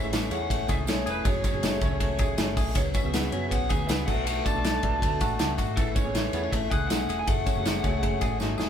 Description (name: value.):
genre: jangly indie pop.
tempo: 160 BPM.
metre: 4/4.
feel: straight.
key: F# minor.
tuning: A4 = 440 Hz.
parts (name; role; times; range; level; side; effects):
lead guitar through a small cranked amp; melody; 0.0-8.4 s; A4 to A5; -32 LUFS; equal; overdrive.
fingerpicked steel-string acoustic guitar; accompaniment; 0.0-8.7 s; F#2 to A4; -36 LUFS; right 5 dB; none.
direct-recorded clean electric guitar; arpeggios; 0.0-8.7 s; E3 to G#4; -32 LUFS; left 5 dB; spring reverb.
vintage muted fingered electric bass; bass; 0.0-8.7 s; E1 to F#2; -32 LUFS; equal; none.
loose indie drum kit; drums; 0.1-8.7 s; crash cymbal, hi-hat, kick drum, ride cymbal, snare drum; -27 LUFS; equal; none.
tambourine; percussion; 0.1-8.7 s; none; -42 LUFS; right 7 dB; none.
room: moderate small room reverb, RT60 0.5 s.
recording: band playing live in one room.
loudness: -24 LUFS.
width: side -8 dB against mid.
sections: 0.0-8.7 A section.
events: drum fill 8.4.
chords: 0.0 Amaj7; 1.3 F#madd9; 2.8 C#7sus4; 4.1 Bm7; 5.8 Amaj7; 7.3 F#madd9.